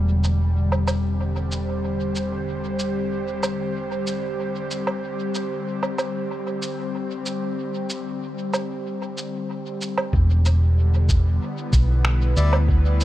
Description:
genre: ambient dub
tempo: 94 BPM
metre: 4/4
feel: straight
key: unclear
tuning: A4 = 441 Hz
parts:
  - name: airy breathy pad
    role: sustained chords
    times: 0.0-13.0 s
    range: D3 to C5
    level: -26 LUFS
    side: left 1 dB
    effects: chorus
  - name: hollow-body short-scale fingered electric bass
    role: bass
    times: 0.0-13.0 s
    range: E1 to D2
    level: -19 LUFS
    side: equal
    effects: none
  - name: electronic cabasa, woodblock and finger snaps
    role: drums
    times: 0.2-13.0 s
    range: none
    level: -29 LUFS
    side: right 2 dB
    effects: studio ambience, dub echo
  - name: electronic kick drum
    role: drums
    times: 10.1-12.8 s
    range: none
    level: -20 LUFS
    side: equal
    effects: studio ambience
  - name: melodica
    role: stabs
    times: 12.4-12.6 s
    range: G3 to D5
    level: -28 LUFS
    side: left 3 dB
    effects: dub echo
room: light reverb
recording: none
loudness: -21 LUFS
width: side -14 dB against mid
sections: 0.0-10.1 A section; 10.1-13.0 B section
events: none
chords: 0.0 Csus2/E; 10.1 Em7

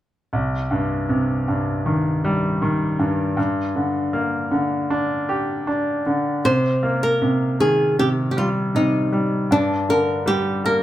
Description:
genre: pop ballad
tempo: 78 BPM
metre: 4/4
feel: straight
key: C minor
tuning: A4 = 437 Hz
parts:
  - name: bright grand piano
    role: accompaniment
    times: 0.3-10.8 s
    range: C2 to G4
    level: -20 LUFS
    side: equal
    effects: none
  - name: flamenco guitar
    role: melody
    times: 6.5-10.8 s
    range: D4 to C5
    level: -20 LUFS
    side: equal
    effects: none
room: moderate large studio reverb, RT60 0.8 s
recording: band playing live in one room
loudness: -18 LUFS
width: side -13 dB against mid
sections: 0.3-6.4 A section; 6.4-10.8 B section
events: none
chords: 0.3 Cm; 3.4 Gm; 6.4 Cm7; 9.5 Gm

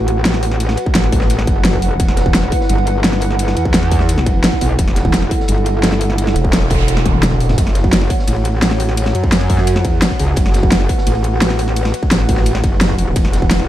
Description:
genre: dark technical drum and bass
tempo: 172 BPM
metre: 4/4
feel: straight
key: F# phrygian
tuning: A4 = 440 Hz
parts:
  - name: dark analog pad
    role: sustained chords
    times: 0.0-13.7 s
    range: E4 to F#5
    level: -22 LUFS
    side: right 1 dB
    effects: chorus, sidechain pumping
  - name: metallic wobble bass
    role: bass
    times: 0.0-13.7 s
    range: E1 to F#2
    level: -16 LUFS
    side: equal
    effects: distortion, chorus, overdrive, sidechain pumping
  - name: dubstep drum kit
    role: drums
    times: 0.1-13.7 s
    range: hi-hat, ride cymbal, snare drum, toms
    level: -18 LUFS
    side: equal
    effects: studio ambience
  - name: crunchy breakbeat drum kit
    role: drums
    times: 0.3-13.6 s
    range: ride cymbal, snare drum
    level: -29 LUFS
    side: equal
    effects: none
  - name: electronic kick drum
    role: drums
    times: 0.9-13.5 s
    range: none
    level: -17 LUFS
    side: equal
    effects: distortion, studio ambience
  - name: noise sweep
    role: sound effects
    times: 6.4-7.6 s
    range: none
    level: -26 LUFS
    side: right 3 dB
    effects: none
  - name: growling FM bass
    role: bass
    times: 6.4-7.6 s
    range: E1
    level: -16 LUFS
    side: equal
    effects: none
room: digital ambience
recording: dark, warm production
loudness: -12 LUFS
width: side -13 dB against mid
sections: 0.0-13.7 A section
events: noise sweep 6.4-7.6; drum fill 7.1-7.6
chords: 0.0 F#m; 2.0 Em; 7.6 F#m; 13.2 E5

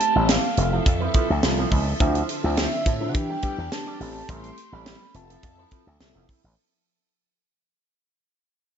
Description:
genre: early-eighties boogie funk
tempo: 105 BPM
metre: 4/4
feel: straight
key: unclear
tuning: A4 = 440 Hz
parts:
  - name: mellow horn-like synth lead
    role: melody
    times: 0.0-6.0 s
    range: E5 to C6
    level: -28 LUFS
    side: right 2 dB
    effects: chorus, slapback echo, tape echo
  - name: phased string machine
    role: sustained chords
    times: 0.0-6.6 s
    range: D3 to E5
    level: -33 LUFS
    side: left 1 dB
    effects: ensemble chorus, phaser
  - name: electric guitar with an envelope filter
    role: riff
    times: 0.0-6.5 s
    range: F3 to B4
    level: -33 LUFS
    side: right 4 dB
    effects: wide subtle chorus, slapback echo
  - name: tight funk drum kit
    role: drums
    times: 0.0-6.4 s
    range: hi-hat, kick drum, snare drum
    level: -23 LUFS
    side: equal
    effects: none
  - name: mellow tine electric piano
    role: accompaniment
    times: 0.2-6.3 s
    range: C4 to G5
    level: -31 LUFS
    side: right 1 dB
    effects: phaser, slapback echo
  - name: slap bass with an envelope filter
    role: bass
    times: 0.2-6.5 s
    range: F1 to E3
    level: -25 LUFS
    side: equal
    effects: none
room: light reverb, studio reverb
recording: nothing above 7.8 kHz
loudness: -20 LUFS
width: side -8 dB against mid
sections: 0.0-6.6 A section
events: fade-out 0.0-6.6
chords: 0.0 Am7; 0.6 Fmaj7; 2.0 Dm9; 3.1 Em7; 4.0 Am7; 5.1 Fmaj7

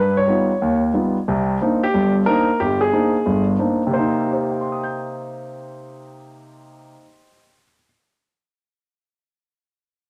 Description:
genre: jazz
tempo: 181 BPM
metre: 4/4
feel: swing 64% on 8ths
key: C minor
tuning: A4 = 440 Hz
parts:
  - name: warm grand piano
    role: solo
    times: 0.0-7.8 s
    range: G1 to G6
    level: -20 LUFS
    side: equal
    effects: none
room: moderate studio reverb, RT60 0.7 s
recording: none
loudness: -19 LUFS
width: mono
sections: 0.0-3.9 A section; 3.9-6.6 B section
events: none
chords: 0.0 Gaug7; 1.3 Cm9; 3.9 Cm7

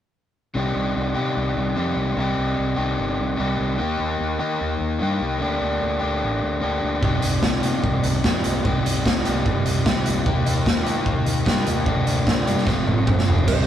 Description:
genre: indie rock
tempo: 148 BPM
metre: 4/4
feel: straight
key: C minor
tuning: A4 = 440 Hz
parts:
  - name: crunchy overdriven guitar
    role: riff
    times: 0.5-13.7 s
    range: F2 to G4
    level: -23 LUFS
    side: left 1 dB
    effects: none
  - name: growling fingered electric bass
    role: bass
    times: 0.6-13.7 s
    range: F1 to Eb3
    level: -27 LUFS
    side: equal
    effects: overdrive
  - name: raw garage drum kit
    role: drums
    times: 7.0-13.6 s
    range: crash cymbal, hi-hat, kick drum, snare drum, toms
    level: -20 LUFS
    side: equal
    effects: none
  - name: fuzz lead guitar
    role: melody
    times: 13.5-13.7 s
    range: C5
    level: -25 LUFS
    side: right 4 dB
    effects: distortion
room: light reverb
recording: rough rehearsal-room recording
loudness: -19 LUFS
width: side -10 dB against mid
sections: 0.6-13.5 A section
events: drum fill 12.7-13.5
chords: 0.6 Cm; 3.8 Eb; 5.4 Gm/D; 7.0 Cm; 10.3 Eb; 11.9 Gm/D; 12.7 F

